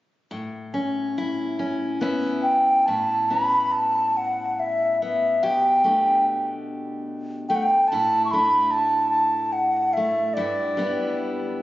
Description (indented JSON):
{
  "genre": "celtic folk, Celtic slow air",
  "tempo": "72 BPM",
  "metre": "3/4",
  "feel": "rubato",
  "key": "A mixolydian",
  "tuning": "A4 = 441 Hz",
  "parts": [
    { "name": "picked steel-string acoustic guitar", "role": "accompaniment", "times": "0.3-11.6 s", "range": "G2 to G4", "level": "-28 LUFS", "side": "left 1 dB", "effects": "none" },
    { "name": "bright baroque flute", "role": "melody", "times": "2.4-11.2 s", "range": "D5 to C#6", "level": "-19 LUFS", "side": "equal", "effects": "none" }
  ],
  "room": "wet concert hall reverb, RT60 2.2 s",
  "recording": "recorded on a phone in the room, studio reverb, compression, nothing above 7.5 kHz",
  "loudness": "-20 LUFS",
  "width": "side -15 dB against mid",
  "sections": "0.3-2.9 A section; 2.9-11.6 B section",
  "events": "none",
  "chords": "0.3 Aadd9; 5.4 Gadd9/B; 7.9 Dsus2/A; 10.3 G6"
}